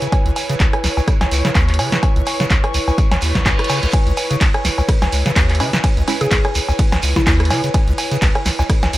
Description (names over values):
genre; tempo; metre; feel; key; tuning
acid house; 126 BPM; 4/4; swing 56% on 16ths; unclear; A4 = 439 Hz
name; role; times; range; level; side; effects
acid bass, square; riff; 0.0-9.0 s; Db2 to Db3; -19 LUFS; equal; lush chorus
punchy analog drum machine; drums; 0.0-9.0 s; cowbell, handclaps, hi-hat, ride cymbal, rim click, snare drum; -20 LUFS; equal; none
shekere; percussion; 0.0-9.0 s; none; -29 LUFS; right 3 dB; none
airy breathy pad; texture; 0.0-9.0 s; Fb4 to Db6; -24 LUFS; equal; chorus, sidechain pumping
electronic kick drum; drums; 0.1-8.8 s; none; -16 LUFS; equal; none
reverse cymbal; sound effects; 3.2-3.9 s; none; -27 LUFS; right 3 dB; none
filtered dub chord stab; stabs; 5.6-6.2 s; Ab3 to Cb5; -25 LUFS; right 3 dB; phaser, cassette tape, digital delay
mallet-like synth pluck; melody; 6.2-7.4 s; Fb4 to Ab4; -23 LUFS; left 1 dB; chorus, digital delay
room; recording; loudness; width
light reverb, digital ambience; none; -14 LUFS; side -16 dB against mid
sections
0.0-9.0 A section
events
reverse cymbal 3.2-3.9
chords
0.0 Dbm7